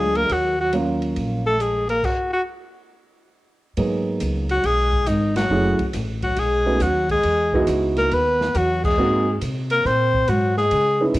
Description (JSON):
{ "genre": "jazz, small-group swing and bop", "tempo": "138 BPM", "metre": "4/4", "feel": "swing 67% on 8ths", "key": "Eb minor, G# minor from 3.8 s", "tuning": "A4 = 438 Hz", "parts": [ { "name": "breathy alto saxophone", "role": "melody", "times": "0.0-11.1 s", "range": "D#4 to B#4", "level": "-20 LUFS", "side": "left 1 dB", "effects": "plate reverb" }, { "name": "breathy trombone", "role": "second line", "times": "0.0-11.1 s", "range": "D#3 to B#3", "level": "-28 LUFS", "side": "right 2 dB", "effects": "plate reverb" }, { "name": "dark upright piano", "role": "accompaniment", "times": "0.0-11.1 s", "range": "Gb3 to G#4", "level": "-22 LUFS", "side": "right 2 dB", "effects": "plate reverb" }, { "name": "upright bass", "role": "bass", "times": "0.0-11.2 s", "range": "F#1 to C#3", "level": "-24 LUFS", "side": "equal", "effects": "none" }, { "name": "open jazz drum kit", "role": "drums", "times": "0.2-11.2 s", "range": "crash cymbal, hi-hat, kick drum, ride cymbal, snare drum", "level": "-31 LUFS", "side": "equal", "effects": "none" } ], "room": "moderate small room reverb, RT60 0.6 s", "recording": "home recording on cassette", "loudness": "-18 LUFS", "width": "side -17 dB against mid", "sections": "0.0-3.8 A section; 3.8-11.2 B section", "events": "stop 2.0-3.8; band accent 5.3, 8.8", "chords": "0.3 Ebm9; 2.9 N.C.; 3.8 G#m7; 5.5 F#m7; 6.4 B7; 7.2 Emaj7; 9.0 G#7" }